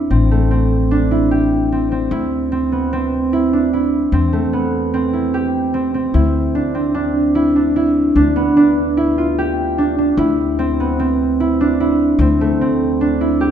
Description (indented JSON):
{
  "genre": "contemporary instrumental, chamber music in an uneven meter",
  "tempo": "149 BPM",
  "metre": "5/4",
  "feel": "straight",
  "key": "unclear",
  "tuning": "A4 = 439 Hz",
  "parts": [
    { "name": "concert harp", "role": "arpeggios", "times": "0.0-13.5 s", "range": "A3 to G4", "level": "-15 LUFS", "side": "right 2 dB", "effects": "none" },
    { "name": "upright bass", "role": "bass", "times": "0.0-13.5 s", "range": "A1 to E2", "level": "-20 LUFS", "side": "left 2 dB", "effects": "none" }
  ],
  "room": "moderate scoring stage reverb, RT60 1.6 s",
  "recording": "minimal, uncompressed stereo recording",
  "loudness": "-14 LUFS",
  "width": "side -9 dB against mid",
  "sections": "0.0-6.1 A section; 6.1-13.5 B section",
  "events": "none",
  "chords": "0.1 Am7; 2.1 Dsus2; 4.1 Cmaj7/E; 6.1 G/D; 10.2 Am7/D",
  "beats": "| 0.11 0.51 0.91 1.31 1.72 | 2.12 2.52 2.92 3.33 3.73 | 4.13 4.54 4.94 5.34 5.74 | 6.15 6.55 6.95 7.36 7.76 | 8.16 8.57 8.97 9.37 9.78 | 10.18 10.58 10.99 11.39 11.79 | 12.20 12.60 13.00 13.40"
}